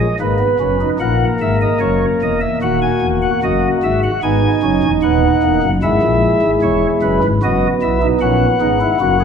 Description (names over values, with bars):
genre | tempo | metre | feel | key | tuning
classical, baroque-style 4-part fugue for pipe organ | 75 BPM | 4/4 | straight | B major | A4 = 440 Hz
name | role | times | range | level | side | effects
pipe organ, flutes | solo | 0.0-9.2 s | D#1 to G#5 | -13 LUFS | equal | none
room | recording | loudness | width
wet recital hall reverb, RT60 1.7 s | minimal, uncompressed stereo recording | -13 LUFS | side -7 dB against mid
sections
1.0-9.2 A section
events
none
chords
0.0 B; 1.0 A#dim; 2.6 D#m; 4.2 G#m; 5.8 C#m/G#; 7.4 B/F#